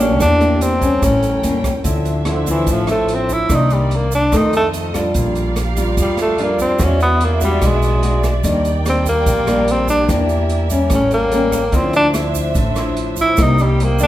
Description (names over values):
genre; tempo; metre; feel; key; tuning
bossa nova; 146 BPM; 4/4; straight; D minor; A4 = 440 Hz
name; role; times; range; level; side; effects
warm tenor saxophone; melody; 0.0-14.1 s; D3 to E4; -17 LUFS; equal; none
nylon-string guitar; accompaniment; 0.0-14.1 s; F2 to G4; -19 LUFS; left 2 dB; none
warm studio string section; sustained chords; 0.0-14.1 s; Bb3 to G5; -26 LUFS; right 2 dB; none
upright bass; bass; 0.0-14.1 s; A1 to F2; -20 LUFS; equal; none
egg shaker; percussion; 0.0-14.1 s; none; -32 LUFS; right 9 dB; none
open jazz drum kit; drums; 0.2-14.1 s; hi-hat, kick drum, rim click; -23 LUFS; right 1 dB; none
room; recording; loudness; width
moderate recital hall reverb, RT60 1.7 s; recorded in a church or concert hall; -14 LUFS; side -14 dB against mid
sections
0.0-1.8 A section; 1.8-14.1 B section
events
tenor saxophone solo 1.8-14.1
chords
0.2 Em7b5; 1.0 A7b9; 1.8 Dm9; 3.5 Cm9; 4.3 F7; 5.1 Bb6; 6.8 E9; 8.4 Ebmaj7; 10.1 Em7b5; 10.9 A7b9; 11.7 Dm9; 13.4 Cm7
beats
| 0.20 0.61 1.02 1.44 | 1.85 2.26 2.67 3.08 | 3.50 3.91 4.32 4.73 | 5.14 5.56 5.97 6.38 | 6.79 7.20 7.62 8.03 | 8.44 8.85 9.26 9.67 | 10.09 10.50 10.91 11.32 | 11.73 12.14 12.56 12.97 | 13.38 13.79